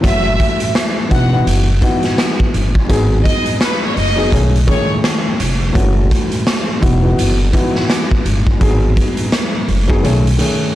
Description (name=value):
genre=hip hop, boom-bap hip-hop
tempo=84 BPM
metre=4/4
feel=swing 59% on 16ths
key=unclear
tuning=A4 = 442 Hz
part: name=rich studio violin section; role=melody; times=0.0-4.9 s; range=B4 to F#5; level=-21 LUFS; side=equal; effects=tape echo
part: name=dark upright piano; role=accompaniment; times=0.0-10.8 s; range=D#3 to G#4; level=-19 LUFS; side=left 2 dB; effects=none
part: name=upright bass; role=bass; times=0.0-10.4 s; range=E1 to B1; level=-15 LUFS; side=equal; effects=transformer saturation
part: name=raw garage drum kit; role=drums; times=0.0-10.6 s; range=hi-hat, kick drum, rim click, snare drum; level=-16 LUFS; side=equal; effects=none
room=small room ambience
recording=blown-out, overdriven recording, vinyl crackle, overdrive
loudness=-12 LUFS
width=side -14 dB against mid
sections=0.0-10.8 A section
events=kick muted 10.0-10.8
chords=0.0 F#m7; 1.1 Badd11/E; 2.9 G#m7; 4.3 B13; 5.8 F#m7; 6.8 Badd11/E; 8.6 G#m7; 10.0 B13